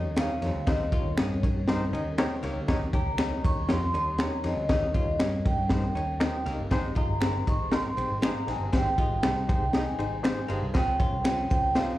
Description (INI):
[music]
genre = uptempo 1960s-style soul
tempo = 119 BPM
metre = 4/4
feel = straight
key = Eb mixolydian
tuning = A4 = 435 Hz
[part]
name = vibraphone with soft mallets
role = melody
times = 0.0-12.0 s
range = Db5 to Db6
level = -31 LUFS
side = right 1 dB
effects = slapback echo
[part]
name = barky reed electric piano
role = accompaniment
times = 0.0-11.9 s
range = Db4 to Eb5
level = -34 LUFS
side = left 2 dB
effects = overdrive, fast tremolo, slapback echo
[part]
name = mellow tonewheel organ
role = sustained chords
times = 0.0-12.0 s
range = Eb3 to C5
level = -41 LUFS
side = right 1 dB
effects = none
[part]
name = archtop guitar, miked and amplified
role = riff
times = 0.0-12.0 s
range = Bb3 to G4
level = -38 LUFS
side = left 6 dB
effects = slapback echo
[part]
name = vintage muted fingered electric bass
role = bass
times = 0.0-11.8 s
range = G1 to G2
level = -32 LUFS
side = equal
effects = none
[part]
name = crunchy breakbeat drum kit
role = drums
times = 0.2-11.9 s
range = kick drum, ride cymbal, snare drum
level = -28 LUFS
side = equal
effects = none
[part]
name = finger snap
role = percussion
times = 0.2-11.4 s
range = none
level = -38 LUFS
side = right 2 dB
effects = none
[part]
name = mellow baritone saxophone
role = riff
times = 0.4-10.9 s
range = Eb2 to Bb2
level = -41 LUFS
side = right 2 dB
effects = slapback echo
[sound]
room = studio ambience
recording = live gig heard through the venue's PA, club reverb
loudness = -24 LUFS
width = side -15 dB against mid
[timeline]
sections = 0.0-12.0 A section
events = none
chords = 0.0 Eb7; 6.7 Abmaj7; 10.7 Dbmaj7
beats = 0.17 | 0.67 1.18 1.68 2.18 | 2.69 3.19 3.69 4.20 | 4.70 5.20 5.71 6.21 | 6.71 7.22 7.72 8.23 | 8.73 9.23 9.74 10.24 | 10.75 11.25 11.76